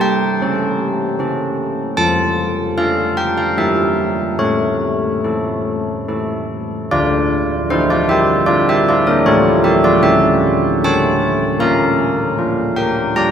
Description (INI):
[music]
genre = classical, tune for church bells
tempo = 76 BPM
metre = 3/4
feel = straight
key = D minor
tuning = A4 = 437 Hz
[part]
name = carillon bells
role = solo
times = 0.0-13.3 s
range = D3 to Bb5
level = -14 LUFS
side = equal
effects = none
[sound]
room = wet cathedral reverb, RT60 4.6 s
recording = heard from further back in the room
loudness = -14 LUFS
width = side -8 dB against mid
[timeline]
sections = 0.0-6.9 A section; 6.9-13.3 B section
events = none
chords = 0.0 A7/G; 2.0 Dm/F; 3.6 Edim/G; 4.4 A; 6.9 Dm; 9.2 A7; 11.6 Bb